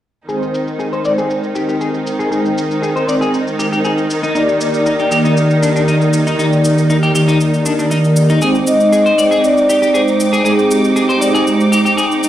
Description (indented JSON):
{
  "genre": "nu-disco, nu disco",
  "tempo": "118 BPM",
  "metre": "4/4",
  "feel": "straight",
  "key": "unclear",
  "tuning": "A4 = 440 Hz",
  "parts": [
    { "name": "mellow synth brass", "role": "accompaniment", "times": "0.3-12.2 s", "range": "Eb3 to G5", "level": "-15 LUFS", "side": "equal", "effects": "chorus, cassette tape, tape echo" },
    { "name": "rich studio string section", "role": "sustained chords", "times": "0.3-12.3 s", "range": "Eb3 to D6", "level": "-19 LUFS", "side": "equal", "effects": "none" },
    { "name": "electric guitar at the edge of break-up", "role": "riff", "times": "0.3-12.0 s", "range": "D4 to D5", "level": "-19 LUFS", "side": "left 2 dB", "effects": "lush chorus, low-pass filter, tape echo" },
    { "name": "cabasa", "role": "drums", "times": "0.3-12.3 s", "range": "none", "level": "-28 LUFS", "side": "left 1 dB", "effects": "overdrive, low-pass filter on perc, small room reverb" },
    { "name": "vibraphone with soft mallets", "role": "melody", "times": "8.7-11.7 s", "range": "G4 to Eb5", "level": "-14 LUFS", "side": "equal", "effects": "none" }
  ],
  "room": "moderate plate reverb, RT60 1.6 s, studio ambience",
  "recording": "played on a big sound system in a bare room, stone room reverb",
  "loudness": "-12 LUFS",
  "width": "side -12 dB against mid",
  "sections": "0.3-12.3 A section",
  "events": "filter sweep on clean electric guitar 0.3-12.3",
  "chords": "0.3 Abmaj7; 4.1 Ebmaj7; 8.4 Abmaj7",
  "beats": "| 0.28 0.79 1.30 1.81 | 2.31 2.82 3.33 3.84 | 4.35 4.86 5.37 5.87 | 6.38 6.89 7.40 7.91 | 8.42 8.92 9.43 9.94 | 10.45 10.96 11.47 11.97"
}